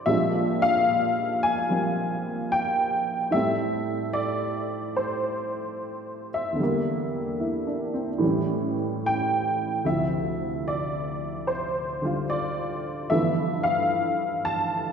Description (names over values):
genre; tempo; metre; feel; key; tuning
solo jazz; 74 BPM; 4/4; swing 68% on 8ths; unclear; A4 = 440 Hz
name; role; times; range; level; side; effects
honky-tonk upright piano; solo; 0.0-14.9 s; D2 to A5; -24 LUFS; equal; none
room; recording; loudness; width
wet concert hall reverb, RT60 2.1 s; recorded in a church or concert hall; -24 LUFS; side -7 dB against mid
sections
0.0-14.9 A section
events
none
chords
0.1 Bb13; 3.3 Am7; 6.6 Em7b5; 8.2 A7; 9.8 Dm9; 13.1 G13